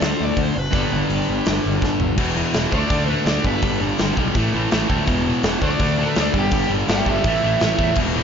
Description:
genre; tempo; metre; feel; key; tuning
punk rock; 166 BPM; 4/4; straight; unclear; A4 = 443 Hz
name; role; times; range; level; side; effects
overdriven electric guitar; melody; 0.0-8.2 s; G4 to B5; -26 LUFS; right 1 dB; ping-pong delay
distorted electric guitar; riff; 0.0-8.2 s; E2 to D4; -21 LUFS; equal; distortion
fuzz picked electric bass; bass; 0.0-8.2 s; E1 to E2; -24 LUFS; equal; overdrive
big rock drum kit; drums; 0.0-8.1 s; crash cymbal, hi-hat, kick drum, snare drum, toms; -23 LUFS; equal; none
room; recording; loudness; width
light reverb; nothing above 7.5 kHz; -17 LUFS; side -7 dB against mid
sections
0.0-2.2 A section; 2.2-8.2 B section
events
half time 0.0-2.2; drum fill 1.8-2.2; overdriven electric guitar solo 2.2-8.2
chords
0.0 D; 0.7 G; 2.2 E5; 2.7 D5; 3.4 G; 4.3 A5; 5.1 E5; 5.6 D5; 6.3 G5; 7.2 A5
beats
0.01 0.37 | 0.73 1.09 1.45 1.81 | 2.17 2.54 2.90 3.26 | 3.62 3.99 4.35 4.71 | 5.08 5.44 5.80 6.16 | 6.52 6.89 7.25 7.61 | 7.97

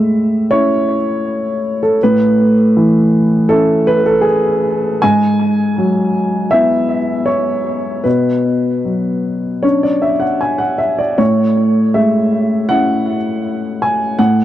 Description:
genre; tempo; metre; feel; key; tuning
neoclassical minimalist piano; 79 BPM; 4/4; uneven beats, rubato; A major; A4 = 442 Hz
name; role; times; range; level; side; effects
warm upright piano; solo; 0.0-14.4 s; G#2 to G#5; -12 LUFS; equal; tape echo
room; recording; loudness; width
light reverb; dry, close 1970s-style studio recording; -12 LUFS; side -12 dB against mid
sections
0.0-14.4 A section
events
none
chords
0.0 Amaj7; 5.0 Eadd9/G#; 8.1 Bmadd9; 11.2 Amaj7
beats
0.49 1.25 | 1.99 2.74 3.49 4.23 | 5.03 5.78 6.51 7.27 | 8.05 8.85 9.63 10.42 | 11.20 11.97 12.71 13.45 | 14.19

